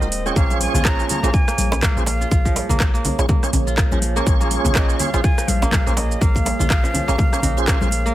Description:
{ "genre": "afro house", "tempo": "123 BPM", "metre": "4/4", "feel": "swing 58% on 16ths", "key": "Bb minor", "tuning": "A4 = 435 Hz", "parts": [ { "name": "breathy bright jazz flute", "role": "melody", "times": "0.0-8.1 s", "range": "Eb5 to Bb5", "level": "-27 LUFS", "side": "equal", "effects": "digital delay" }, { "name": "dark analog pad", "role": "sustained chords", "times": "0.0-8.1 s", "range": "Ab3 to Db5", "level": "-30 LUFS", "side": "right 2 dB", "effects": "chorus, phaser, sidechain pumping" }, { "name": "kora", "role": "arpeggios", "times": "0.0-8.1 s", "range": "F3 to F4", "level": "-28 LUFS", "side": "equal", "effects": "sidechain pumping, digital delay" }, { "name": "tonewheel organ", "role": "stabs", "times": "0.0-7.9 s", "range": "Db4 to Db5", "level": "-26 LUFS", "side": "right 3 dB", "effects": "chorus vibrato, fast rotary speaker, sidechain pumping, digital delay" }, { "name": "warm 808-style bass", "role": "bass", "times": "0.0-8.1 s", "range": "Eb1 to Bb1", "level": "-22 LUFS", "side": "equal", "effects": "sidechain pumping" }, { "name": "house drum kit", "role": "drums", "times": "0.0-8.1 s", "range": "handclaps, hi-hat, rim click, shaker", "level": "-24 LUFS", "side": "right 1 dB", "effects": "none" }, { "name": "electronic kick drum", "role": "drums", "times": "0.4-7.8 s", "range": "none", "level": "-18 LUFS", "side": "equal", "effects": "none" }, { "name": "congas", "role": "percussion", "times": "0.5-8.0 s", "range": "none", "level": "-27 LUFS", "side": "left 3 dB", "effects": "none" }, { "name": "djembe", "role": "percussion", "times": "0.5-7.8 s", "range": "none", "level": "-27 LUFS", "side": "right 1 dB", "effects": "none" } ], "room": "small room reverb", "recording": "none", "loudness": "-16 LUFS", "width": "side -14 dB against mid", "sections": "0.0-8.1 A section", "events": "none", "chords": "0.4 Bbm7" }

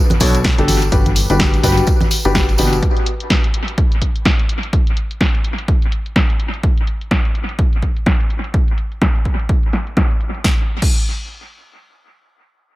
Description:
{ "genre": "piano house", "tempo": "126 BPM", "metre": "4/4", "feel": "swing 59% on 16ths", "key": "unclear", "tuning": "A4 = 440 Hz", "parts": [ { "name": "punchy analog drum machine", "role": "drums", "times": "0.1-10.9 s", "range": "crash cymbal, hi-hat, snare drum", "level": "-20 LUFS", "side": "equal", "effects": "low-pass filter on hats, low-pass filter on snare, low-pass filter on cymbals, low-pass filter on room, dub echo" }, { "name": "congas and tambourine", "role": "percussion", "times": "0.1-2.8 s", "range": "none", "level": "-24 LUFS", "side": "right 2 dB", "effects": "dub echo" }, { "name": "clear concert grand piano", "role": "riff", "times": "0.2-2.7 s", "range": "B2 to C#5", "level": "-19 LUFS", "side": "left 2 dB", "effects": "sidechain pumping, low-pass filter, dub echo" }, { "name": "plucky analog bass", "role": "bass", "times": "0.2-2.8 s", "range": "G1 to B1", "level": "-17 LUFS", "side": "equal", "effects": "tube saturation, sidechain pumping" }, { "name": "electronic kick drum", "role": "drums", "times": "0.2-10.9 s", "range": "none", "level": "-16 LUFS", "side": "equal", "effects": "none" } ], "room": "light reverb", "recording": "echo-heavy mix", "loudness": "-14 LUFS", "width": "side -18 dB against mid", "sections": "0.0-10.4 A section; 10.4-12.8 B section", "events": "filter sweep on drum 0.0-10.4; filter sweep on grand piano 0.0-2.8", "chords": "0.0 Bm7; 0.7 Gmaj7; 2.8 N.C." }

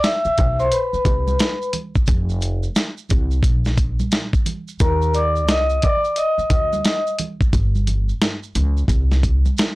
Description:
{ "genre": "hip hop, jazz-hop", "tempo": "88 BPM", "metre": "4/4", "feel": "swing 64% on 16ths", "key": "unclear", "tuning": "A4 = 445 Hz", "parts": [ { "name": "vibraphone with medium mallets", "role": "accompaniment", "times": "0.0-7.2 s", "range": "Bb4 to E6", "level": "-19 LUFS", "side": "left 1 dB", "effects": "none" }, { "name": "dusty soul sampler-style drum kit", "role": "drums", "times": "0.0-9.8 s", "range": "hi-hat, kick drum, snare drum", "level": "-19 LUFS", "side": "equal", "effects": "none" }, { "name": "maracas and congas", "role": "percussion", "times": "0.0-9.8 s", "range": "none", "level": "-32 LUFS", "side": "right 4 dB", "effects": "none" }, { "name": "upright bass", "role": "bass", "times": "0.2-9.5 s", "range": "F1 to Eb2", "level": "-20 LUFS", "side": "equal", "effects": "none" } ], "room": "little or no reverb", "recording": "blown-out, overdriven recording, overdrive", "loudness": "-17 LUFS", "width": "side -20 dB against mid", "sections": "0.0-9.8 A section", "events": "vibraphone solo 0.0-9.8", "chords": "0.0 Cmaj7; 2.1 F5; 3.4 N.C.; 4.8 Eb5; 7.5 N.C." }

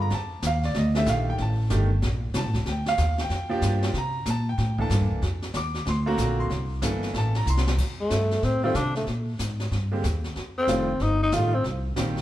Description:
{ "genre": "jazz, small-group swing and bop", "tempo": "187 BPM", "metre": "4/4", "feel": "swing 64% on 8ths", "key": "F mixolydian", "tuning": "A4 = 440 Hz", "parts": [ { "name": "clear grand piano", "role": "accompaniment", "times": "0.0-12.2 s", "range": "D3 to D6", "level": "-29 LUFS", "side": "right 1 dB", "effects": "none" }, { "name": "upright bass", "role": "bass", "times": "0.0-12.2 s", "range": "F1 to C3", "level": "-25 LUFS", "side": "equal", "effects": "none" }, { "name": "jazz brush drum kit", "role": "drums", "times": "0.1-12.2 s", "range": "brushed snare drum, crash cymbal, hi-hat, kick drum, snare drum", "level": "-33 LUFS", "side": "equal", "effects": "none" }, { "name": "growling tenor saxophone", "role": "melody", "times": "8.0-11.7 s", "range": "A3 to F4", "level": "-25 LUFS", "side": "left 1 dB", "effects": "none" } ], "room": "wet stone room reverb, RT60 1.3 s", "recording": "band playing live in one room", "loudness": "-23 LUFS", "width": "side -14 dB against mid", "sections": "0.0-7.8 A section; 7.8-12.2 B section", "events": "drum fill 7.5-7.8", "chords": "0.1 F13; 2.7 Gm7; 3.9 C13; 5.2 Ebsus2; 5.9 Daug7; 6.5 C13; 7.8 Fadd9; 9.1 Bb7(no3); 10.4 F13; 11.6 Cm7" }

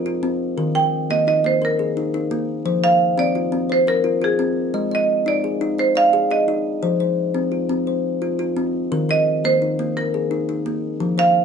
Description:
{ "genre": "southern african traditional", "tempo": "115 BPM (dotted quarters)", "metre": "12/8", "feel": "straight", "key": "unclear", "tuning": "A4 = 438 Hz", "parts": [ { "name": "kalimba", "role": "arpeggios", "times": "0.0-11.4 s", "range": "Eb3 to Eb5", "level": "-21 LUFS", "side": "left 3 dB", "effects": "none" }, { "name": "marimba with hard mallets", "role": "melody", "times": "0.8-11.4 s", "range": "Ab4 to G5", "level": "-18 LUFS", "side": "right 3 dB", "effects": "plate reverb" } ], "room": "wet studio reverb, RT60 0.6 s", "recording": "nothing above 11.0 kHz", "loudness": "-17 LUFS", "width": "side -6 dB against mid", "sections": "0.0-11.0 A section", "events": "none", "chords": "0.0 F5; 0.6 Eb5; 2.7 F5; 4.7 Ab5; 6.8 F5; 8.9 Eb5" }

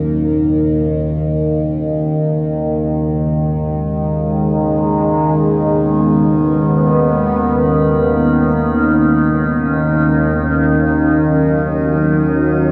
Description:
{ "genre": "dark ambient drone", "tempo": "free time", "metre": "none", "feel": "none", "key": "unclear", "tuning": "A4 = 436 Hz", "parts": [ { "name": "sweeping resonant pad", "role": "sustained chords", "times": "0.0-12.7 s", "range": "Eb3 to Db4", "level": "-18 LUFS", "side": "equal", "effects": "chorus, shimmer reverb" }, { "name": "overtone-sweeping drone", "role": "drone", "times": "0.0-12.7 s", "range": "Eb2 to Eb3", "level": "-18 LUFS", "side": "equal", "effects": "chorus, built-in reverb, phaser" } ], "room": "wet huge ambient reverb, RT60 9.3 s", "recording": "none", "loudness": "-15 LUFS", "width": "mono", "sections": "0.0-12.7 A section", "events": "none", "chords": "0.0 Ebm; 2.2 Abm; 10.8 Ebm" }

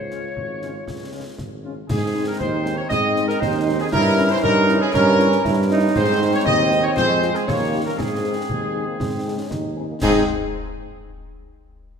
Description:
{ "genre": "military-style march for wind band", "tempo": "118 BPM", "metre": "2/4", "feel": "straight", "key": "Ab major", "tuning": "A4 = 440 Hz", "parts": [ { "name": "clear woodwind section", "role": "second line", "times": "0.0-10.2 s", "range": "Eb4 to Eb5", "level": "-27 LUFS", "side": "left 3 dB", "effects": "none" }, { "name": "warm euphonium", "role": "second line", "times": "0.0-10.0 s", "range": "Ab3 to F4", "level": "-25 LUFS", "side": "right 3 dB", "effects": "none" }, { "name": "warm tuba", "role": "bass", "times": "0.0-10.2 s", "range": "Ab1 to Ab2", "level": "-23 LUFS", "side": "right 2 dB", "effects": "none" }, { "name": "dark trumpet section", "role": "melody", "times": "0.1-10.2 s", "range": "F4 to Eb5", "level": "-23 LUFS", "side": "equal", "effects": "none" }, { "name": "mellow French horn section", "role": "accompaniment", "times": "0.1-10.2 s", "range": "Db3 to Ab4", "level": "-30 LUFS", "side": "left 7 dB", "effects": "none" }, { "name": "concert snare drum, concert bass drum and clash cymbals", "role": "drums", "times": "0.1-10.3 s", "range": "none", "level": "-29 LUFS", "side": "left 2 dB", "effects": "none" }, { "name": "clear trombone section", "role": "sustained chords", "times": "1.9-10.2 s", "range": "Eb3 to Db4", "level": "-29 LUFS", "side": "right 2 dB", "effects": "none" } ], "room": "wet concert hall reverb, RT60 2.2 s", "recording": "none", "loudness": "-17 LUFS", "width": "side -6 dB against mid", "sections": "0.0-1.9 A section; 1.9-10.0 B section; 10.0-11.0 C section", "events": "none", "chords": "0.0 Db; 1.9 Ab; 3.9 Gdim7; 6.0 Ab; 7.0 Fm; 7.5 Eb7; 8.0 Ab" }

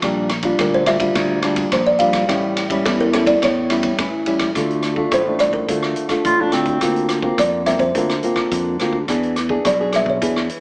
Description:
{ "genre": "samba and choro", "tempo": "106 BPM", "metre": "4/4", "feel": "straight", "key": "D minor", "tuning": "A4 = 440 Hz", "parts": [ { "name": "nylon-string guitar", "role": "accompaniment", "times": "0.0-10.6 s", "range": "A2 to G#4", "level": "-20 LUFS", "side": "equal", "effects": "none" }, { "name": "modern bright fingered electric bass", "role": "bass", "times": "0.0-10.5 s", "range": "A1 to F2", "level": "-23 LUFS", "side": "equal", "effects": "none" }, { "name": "swinging big-band drum kit", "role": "drums", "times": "0.0-10.6 s", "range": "hi-hat, kick drum, ride cymbal, rim click", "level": "-24 LUFS", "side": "equal", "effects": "none" }, { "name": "kalimba", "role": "melody", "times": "0.6-10.4 s", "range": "A4 to F5", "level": "-19 LUFS", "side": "equal", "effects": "plate reverb" }, { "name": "clear clarinet", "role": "second line", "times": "6.3-7.2 s", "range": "C4 to F4", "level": "-18 LUFS", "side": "equal", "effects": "none" } ], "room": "moderate studio reverb, RT60 0.9 s", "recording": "heard from further back in the room, small speaker sound", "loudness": "-15 LUFS", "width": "side -29 dB against mid", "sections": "0.0-4.6 A section; 4.6-10.6 B section", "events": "none", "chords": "0.0 Gm7/Bb; 2.3 A7; 4.6 Dm; 6.8 Bbadd9/D; 9.1 E7" }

